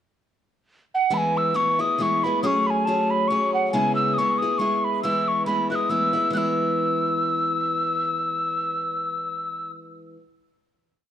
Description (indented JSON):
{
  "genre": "celtic folk, Celtic waltz",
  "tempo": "138 BPM",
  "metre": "3/4",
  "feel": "swing 56% on 8ths",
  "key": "E major",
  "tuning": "A4 = 440 Hz",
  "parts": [
    { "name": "mellow hollow mid whistle", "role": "melody", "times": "0.9-9.7 s", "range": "F#5 to F#6", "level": "-22 LUFS", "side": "equal", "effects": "none" },
    { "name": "picked old ladder-braced acoustic guitar", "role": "accompaniment", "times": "1.1-10.2 s", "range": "C#3 to G#4", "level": "-25 LUFS", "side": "left 1 dB", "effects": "none" }
  ],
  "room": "moderate recital hall reverb, RT60 1.5 s",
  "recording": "dark, warm production",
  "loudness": "-20 LUFS",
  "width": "side -10 dB against mid",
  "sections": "0.0-1.1 pickup bar; 1.1-6.3 A section; 6.3-9.0 final chord",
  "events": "none",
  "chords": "0.0 N.C.; 1.1 E; 2.4 F#madd9; 3.7 C#m7; 5.0 E",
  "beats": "0.23 0.66 | 1.10 1.54 1.98 | 2.42 2.86 3.29 | 3.73 4.17 4.61 | 5.04 5.48 5.91 | 6.35 6.78 7.21 | 7.65 8.08 8.52"
}